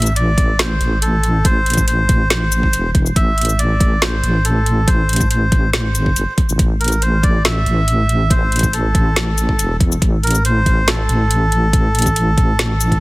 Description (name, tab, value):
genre	deep dubstep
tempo	140 BPM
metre	4/4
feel	half-time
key	A phrygian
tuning	A4 = 440 Hz
part	melodica	melody	0.0-13.0 s	A4 to E5	-20 LUFS	equal	dub echo
part	deep soft wobble bass	bass	0.0-13.0 s	E1 to A1	-16 LUFS	equal	chorus
part	garage drum kit	drums	0.0-13.0 s	hi-hat, shaker, snare drum	-20 LUFS	equal	none
part	electronic kick drum	drums	0.4-13.0 s	none	-16 LUFS	equal	none
room	digital ambience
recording	heavily compressed radio sound, multiband compression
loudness	-13 LUFS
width	side -21 dB against mid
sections	0.0-13.0 A section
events	none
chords	0.0 A5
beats	0.16 0.59 1.02 | 1.45 1.88 2.31 2.73 | 3.16 3.59 4.02 4.45 | 4.88 5.30 5.73 6.16 | 6.59 7.02 7.45 7.88 | 8.30 8.73 9.16 9.59 | 10.02 10.45 10.88 11.30 | 11.73 12.16 12.59